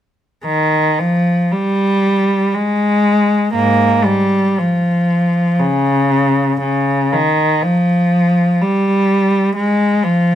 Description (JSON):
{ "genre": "classical, free, expressive piece for unaccompanied cello", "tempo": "59 BPM", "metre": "3/4", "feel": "uneven beats, rubato", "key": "unclear", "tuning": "A4 = 440 Hz", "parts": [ { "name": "clear cello", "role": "solo", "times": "0.5-10.3 s", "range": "Ab2 to Bb3", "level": "-12 LUFS", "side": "equal", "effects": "none" } ], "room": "light reverb", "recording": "none", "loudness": "-12 LUFS", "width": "side -10 dB against mid", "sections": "0.5-10.3 A section", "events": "none", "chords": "none" }